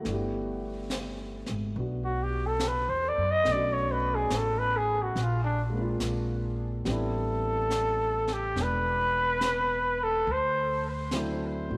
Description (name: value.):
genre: jazz ballad.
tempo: 70 BPM.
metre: 4/4.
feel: swing 69% on 8ths.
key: G major.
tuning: A4 = 442 Hz.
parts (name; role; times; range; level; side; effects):
warm concert grand piano; accompaniment; 0.0-11.8 s; F#3 to A4; -38 LUFS; equal; none.
jazz brush drum kit; drums; 0.0-11.8 s; brushed snare drum, hi-hat, snare drum; -40 LUFS; equal; none.
upright bass; bass; 0.1-11.8 s; E1 to A2; -35 LUFS; equal; none.
growling trumpet; melody; 2.0-10.9 s; D4 to Eb5; -30 LUFS; equal; tape echo.
room: moderate plate reverb, RT60 2.4 s.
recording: none.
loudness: -29 LUFS.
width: mono.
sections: 0.1-11.8 A section.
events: trumpet solo 0.1-11.8.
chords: 0.1 G6; 3.5 Bm7; 5.2 Bb9; 6.9 Am11; 10.3 D9.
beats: | 0.05 0.91 1.76 2.61 | 3.46 4.31 5.16 6.01 | 6.86 7.71 8.56 9.41 | 10.26 11.12.